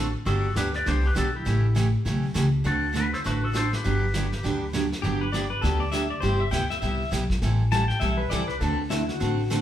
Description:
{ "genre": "country, western swing", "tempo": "201 BPM", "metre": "4/4", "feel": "swing 60% on 8ths", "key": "G major", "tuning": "A4 = 440 Hz", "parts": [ { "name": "clean lap steel guitar", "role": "melody", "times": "0.0-4.7 s", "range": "E4 to D5", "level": "-29 LUFS", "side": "left 2 dB", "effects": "none" }, { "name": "picked steel-string acoustic guitar", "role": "accompaniment", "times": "0.0-9.6 s", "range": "C3 to A4", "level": "-28 LUFS", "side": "right 2 dB", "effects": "none" }, { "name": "upright bass", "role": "bass", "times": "0.0-9.6 s", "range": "G1 to D2", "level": "-26 LUFS", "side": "equal", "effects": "none" }, { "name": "vintage brush drum kit", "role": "drums", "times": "0.3-9.6 s", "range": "brushed snare drum, hi-hat, kick drum, snare drum", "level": "-34 LUFS", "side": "equal", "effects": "none" }, { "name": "pedal steel guitar", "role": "second line", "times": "5.0-9.6 s", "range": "E4 to A5", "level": "-29 LUFS", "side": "left 4 dB", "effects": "none" } ], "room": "wet large studio reverb, RT60 0.9 s", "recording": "band playing live in one room", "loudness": "-22 LUFS", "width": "side -11 dB against mid", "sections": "0.0-5.0 A section; 5.0-9.6 B section", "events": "pedal steel guitar solo 5.0-9.6", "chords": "0.3 Gmaj7; 1.5 A7; 2.7 D7; 3.8 Gmaj7; 6.2 Cmaj7/G; 7.4 Am7; 8.6 D7" }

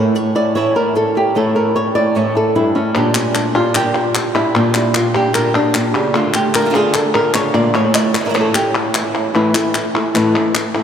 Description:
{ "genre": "flamenco", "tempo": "150 BPM", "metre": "4/4", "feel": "straight", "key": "A phrygian dominant", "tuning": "A4 = 440 Hz", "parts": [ { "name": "flamenco guitar", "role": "melody", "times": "0.0-10.8 s", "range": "G2 to D5", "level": "-15 LUFS", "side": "left 1 dB", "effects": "analog delay" }, { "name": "flamenco guitar", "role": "stabs", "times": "0.0-9.3 s", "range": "A2 to G4", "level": "-20 LUFS", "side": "right 3 dB", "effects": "wide subtle chorus, analog delay" }, { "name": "palmas hand claps", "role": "percussion", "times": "3.0-10.8 s", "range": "none", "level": "-19 LUFS", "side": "left 3 dB", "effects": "none" } ], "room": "wet cathedral reverb, RT60 6.0 s", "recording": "dreamy mix soaked in reverb", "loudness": "-13 LUFS", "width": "side -8 dB against mid", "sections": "0.0-9.3 A section; 9.3-10.8 B section", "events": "nylon-string guitar solo 0.0-9.3", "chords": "0.0 A; 3.0 Gm/Bb; 6.1 Dm; 7.7 A" }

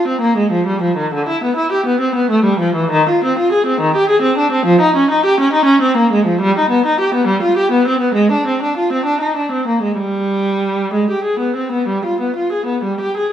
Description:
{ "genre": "classical, baroque-style suite movement for unaccompanied viola", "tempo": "59-70 BPM (dotted quarters)", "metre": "12/8", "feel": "rubato", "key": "unclear", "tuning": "A4 = 438 Hz", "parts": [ { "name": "warm viola", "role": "solo", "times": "0.0-13.3 s", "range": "D3 to Ab4", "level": "-13 LUFS", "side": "equal", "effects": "none" } ], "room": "wet stone room reverb, RT60 1.3 s", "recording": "heard from further back in the room", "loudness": "-13 LUFS", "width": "side -10 dB against mid", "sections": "0.0-13.3 A section", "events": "none", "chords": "none" }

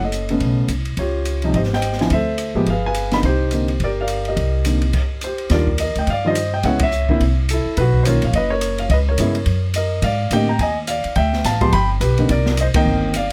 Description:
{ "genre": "jazz piano trio", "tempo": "212 BPM", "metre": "4/4", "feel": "swing 59% on 8ths", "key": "C dorian", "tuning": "A4 = 440 Hz", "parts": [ { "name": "warm grand piano", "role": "melody", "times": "0.0-13.3 s", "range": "C3 to C6", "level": "-22 LUFS", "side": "equal", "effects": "none" }, { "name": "upright bass", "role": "bass", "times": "0.0-13.3 s", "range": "F#1 to A2", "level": "-22 LUFS", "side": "equal", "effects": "none" }, { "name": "open jazz drum kit", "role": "drums", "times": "0.1-13.3 s", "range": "crash cymbal, hi-hat, kick drum, ride cymbal, snare drum", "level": "-28 LUFS", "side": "equal", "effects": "none" } ], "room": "little or no reverb", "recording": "close, detailed microphones", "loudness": "-19 LUFS", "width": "mono", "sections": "0.0-5.5 A section; 5.5-13.3 B section", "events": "stop 4.9-5.5; band accent 6.8, 12.7", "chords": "0.4 Bsus2; 1.0 Dbmaj9#11; 2.1 D7sus2; 2.7 G7b9; 3.2 Cm9; 5.5 Ebmaj9; 6.6 Dbm7; 7.2 C; 7.8 Bmaj9#11; 8.9 Dbm7; 9.5 Gb; 10.0 Abmaj7sus2; 11.2 Dmadd9; 11.7 G; 12.3 Cm9" }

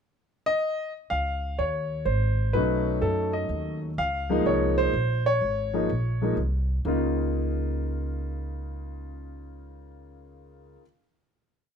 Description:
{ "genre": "jazz piano trio", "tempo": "125 BPM", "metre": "3/4", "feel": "swing 66% on 8ths", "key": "Db major", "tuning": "A4 = 440 Hz", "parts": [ { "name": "warm concert grand piano", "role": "melody", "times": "0.5-10.8 s", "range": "Db3 to F5", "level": "-26 LUFS", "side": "equal", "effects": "plate reverb" }, { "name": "upright bass", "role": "bass", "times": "1.1-10.8 s", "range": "Ab1 to Gb2", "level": "-28 LUFS", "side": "equal", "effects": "none" } ], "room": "light reverb", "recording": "close, detailed microphones", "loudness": "-24 LUFS", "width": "side -7 dB against mid", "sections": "0.0-1.1 pickup bar; 1.1-6.9 A section; 6.9-9.7 final chord", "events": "none", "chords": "0.0 N.C.; 1.1 Dbadd9; 2.5 Cb9; 4.0 Db69" }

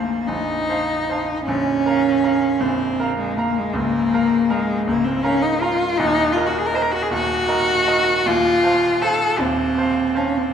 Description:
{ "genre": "classical, romantic duo for cello and grand piano", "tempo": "53 BPM (dotted quarters)", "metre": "6/8", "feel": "rubato", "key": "Bb minor", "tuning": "A4 = 440 Hz", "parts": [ { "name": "rich cello", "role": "melody", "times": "0.0-10.5 s", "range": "Ab3 to C5", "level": "-18 LUFS", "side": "equal", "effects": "none" }, { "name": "bright grand piano", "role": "accompaniment", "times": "0.0-10.5 s", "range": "Bb0 to Bb5", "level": "-23 LUFS", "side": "right 2 dB", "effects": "none" } ], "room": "wet scoring stage reverb, RT60 2.0 s", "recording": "minimal, uncompressed stereo recording", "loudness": "-17 LUFS", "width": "side -8 dB against mid", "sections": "0.0-10.5 A section", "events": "none", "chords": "0.0 F7/Bb; 1.5 Bbm; 3.7 Bbm/Db; 6.0 Ebm; 8.3 F7/Eb" }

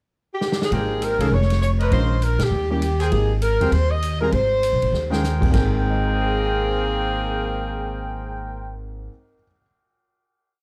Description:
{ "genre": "jazz, big band swing", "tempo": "200 BPM", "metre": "4/4", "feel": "swing 62% on 8ths", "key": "Ab major", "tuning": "A4 = 440 Hz", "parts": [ { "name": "mellow saxophone section", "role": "melody", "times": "0.3-8.7 s", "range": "Eb3 to Eb5", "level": "-26 LUFS", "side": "equal", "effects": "none" }, { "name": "swinging big-band drum kit", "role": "drums", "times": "0.4-5.6 s", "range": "crash cymbal, hi-hat, kick drum, ride cymbal, snare drum", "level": "-29 LUFS", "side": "equal", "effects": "none" }, { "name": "warm concert grand piano", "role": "accompaniment", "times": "0.7-9.7 s", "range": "Ab2 to Bb6", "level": "-30 LUFS", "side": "equal", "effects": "none" }, { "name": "warm trumpet section", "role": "stabs", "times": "0.7-8.7 s", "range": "Ab4 to Bb5", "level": "-31 LUFS", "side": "equal", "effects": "none" }, { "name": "upright bass", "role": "bass", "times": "0.7-9.1 s", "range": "F1 to Bb2", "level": "-25 LUFS", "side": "equal", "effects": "none" } ], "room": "light reverb", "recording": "dark, warm production", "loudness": "-21 LUFS", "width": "mono", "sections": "0.0-0.7 pickup bar; 0.7-5.5 A section; 5.5-7.9 final chord", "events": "drum fill 0.4-0.7, 4.9; band accent 2.4", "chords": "0.0 N.C.; 0.7 Abmaj9; 1.3 F5; 1.9 Bbm9; 2.5 Eb7b9; 3.1 Abmaj9" }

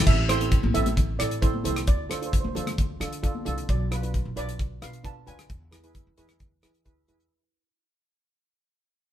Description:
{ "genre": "calypso", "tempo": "132 BPM", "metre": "4/4", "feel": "straight", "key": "A minor", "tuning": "A4 = 438 Hz", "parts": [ { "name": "steel pan", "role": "accompaniment", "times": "0.0-7.3 s", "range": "C4 to B4", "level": "-33 LUFS", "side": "right 3 dB", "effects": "none" }, { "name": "upright bass", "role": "bass", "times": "0.0-7.3 s", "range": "A1 to E3", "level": "-30 LUFS", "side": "equal", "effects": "none" }, { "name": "steel pan", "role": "melody", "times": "0.1-7.0 s", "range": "B4 to A5", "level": "-33 LUFS", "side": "right 6 dB", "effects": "none" }, { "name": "damped 70s drum kit", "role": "drums", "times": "0.1-7.3 s", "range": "crash cymbal, hi-hat, kick drum, rim click", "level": "-25 LUFS", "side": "equal", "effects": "none" }, { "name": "congas", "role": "percussion", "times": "0.6-3.6 s", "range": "none", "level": "-32 LUFS", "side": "left 4 dB", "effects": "none" } ], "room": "light reverb", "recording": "band playing live in one room", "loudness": "-23 LUFS", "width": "side -11 dB against mid", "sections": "0.1-7.3 A section", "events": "fade-out 0.1-7.3", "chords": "0.1 Am; 1.9 Dm7; 3.7 Bdim; 5.5 E" }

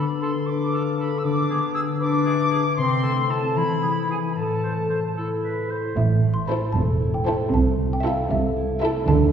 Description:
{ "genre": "cinematic, playful, whimsical film cue", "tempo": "77 BPM (dotted quarters)", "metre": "6/8", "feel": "straight", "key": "A minor", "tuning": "A4 = 439 Hz", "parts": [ { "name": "bright small flute group", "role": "second line", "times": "0.0-5.2 s", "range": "G#5 to E6", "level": "-26 LUFS", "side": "left 2 dB", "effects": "none" }, { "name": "clear clarinet", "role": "second line", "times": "0.0-5.8 s", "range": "C4 to A4", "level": "-28 LUFS", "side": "left 4 dB", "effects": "none" }, { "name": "warm oboe", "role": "second line", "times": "0.0-6.0 s", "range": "G#4 to C5", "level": "-35 LUFS", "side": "right 2 dB", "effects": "none" }, { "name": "concert harp", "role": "arpeggios", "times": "0.0-9.3 s", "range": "A2 to F5", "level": "-24 LUFS", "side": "left 2 dB", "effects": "none" }, { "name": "xylophone with soft rubber mallets", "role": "melody", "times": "6.0-9.3 s", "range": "E5 to C6", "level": "-30 LUFS", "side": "left 1 dB", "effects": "none" }, { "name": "warm studio cello section", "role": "bass", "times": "6.0-9.3 s", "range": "E2 to D3", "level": "-25 LUFS", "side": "right 3 dB", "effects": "none" }, { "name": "warm studio double bass section", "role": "bass", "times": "6.0-9.3 s", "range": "E1 to D2", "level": "-23 LUFS", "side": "right 3 dB", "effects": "none" }, { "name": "warm studio violin section", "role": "melody", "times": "6.5-9.0 s", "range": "C5 to E5", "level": "-34 LUFS", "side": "left 1 dB", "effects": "none" }, { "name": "rich studio violin section", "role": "second line", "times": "6.5-9.0 s", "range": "A4", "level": "-31 LUFS", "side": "equal", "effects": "none" }, { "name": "warm studio viola section", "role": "accompaniment", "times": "6.5-9.0 s", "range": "E4", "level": "-31 LUFS", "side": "right 3 dB", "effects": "none" } ], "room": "wet concert hall reverb, RT60 2.0 s", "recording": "heard from further back in the room, lossy compression artefacts", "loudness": "-20 LUFS", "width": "side -8 dB against mid", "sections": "0.0-6.0 A section; 6.0-9.3 B section", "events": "none", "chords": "0.0 Bm7b5/D; 1.2 E7/D; 2.8 Am/C; 3.6 E; 4.4 Am; 7.5 Am/C" }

